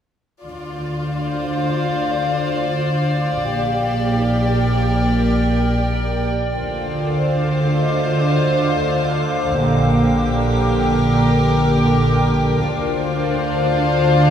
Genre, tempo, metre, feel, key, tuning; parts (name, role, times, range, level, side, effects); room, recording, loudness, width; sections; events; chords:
cinematic; 98 BPM; 5/4; straight; D phrygian; A4 = 443 Hz
warm symphonic violin section; second line; 0.4-14.3 s; F4 to D5; -26 LUFS; left 2 dB
evolving wavetable pad; sustained chords; 1.0-14.3 s; Bb4 to D6; -23 LUFS; left 2 dB; chorus, built-in reverb
dark studio cello section; bass; 0.4-14.3 s; Bb2 to D3; -21 LUFS; right 1 dB
dark symphonic double bass section; bass; 0.4-14.3 s; Bb1 to D2; -23 LUFS; right 2 dB
vibraphone with soft mallets; texture; 1.1-9.7 s; D4 to Eb5; -29 LUFS; equal
warm symphonic violin section; melody; 6.6-14.3 s; Bb4 to C5; -25 LUFS; left 4 dB
dark studio viola section; accompaniment; 6.6-14.3 s; D3 to D4; -22 LUFS; right 1 dB
wet scoring stage reverb, RT60 2.0 s; heard from further back in the room; -16 LUFS; side -9 dB against mid
0.4-6.6 A section; 6.6-14.3 B section
0.4 Dm7; 3.5 Bb6; 6.6 Dm7; 9.6 Bb6; 12.7 Dm7